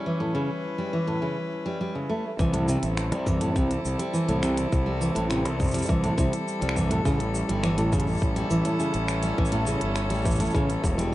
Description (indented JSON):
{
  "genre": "folktronica",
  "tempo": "103 BPM",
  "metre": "4/4",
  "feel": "straight",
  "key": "C major",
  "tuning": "A4 = 442 Hz",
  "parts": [
    { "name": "rich string quartet", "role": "sustained chords", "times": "0.0-11.1 s", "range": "G3 to B4", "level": "-31 LUFS", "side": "left 1 dB", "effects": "none" },
    { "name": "picked steel-string acoustic guitar", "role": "arpeggios", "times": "0.0-11.1 s", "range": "A2 to A3", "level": "-27 LUFS", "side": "right 1 dB", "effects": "digital delay" },
    { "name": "fuzz fingered electric bass", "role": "bass", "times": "2.4-11.1 s", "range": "E1 to C2", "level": "-28 LUFS", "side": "equal", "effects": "overdrive" },
    { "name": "electronic kick drum", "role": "drums", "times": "2.4-11.0 s", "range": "none", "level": "-26 LUFS", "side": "equal", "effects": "none" },
    { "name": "organic electronic drum kit", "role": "drums", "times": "2.4-11.1 s", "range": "finger snaps, hi-hat, shaker, toms", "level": "-34 LUFS", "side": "equal", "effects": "low-pass filter on perc, low-pass filter on hats, low-pass filter on snare, low-pass filter on toms, low-pass filter on room" }
  ],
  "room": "moderate studio reverb, RT60 0.5 s",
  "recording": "nothing above 10.6 kHz",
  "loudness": "-23 LUFS",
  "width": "side -16 dB against mid",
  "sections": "0.0-2.4 A section; 2.4-11.1 B section",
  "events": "none",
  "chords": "0.0 A7; 2.4 C6; 7.1 A7",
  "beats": "| 0.06 0.64 1.23 1.81 | 2.39 2.97 3.56 4.14 | 4.72 5.30 5.89 6.47 | 7.05 7.63 8.22 8.80 | 9.38 9.96 10.55 11.13"
}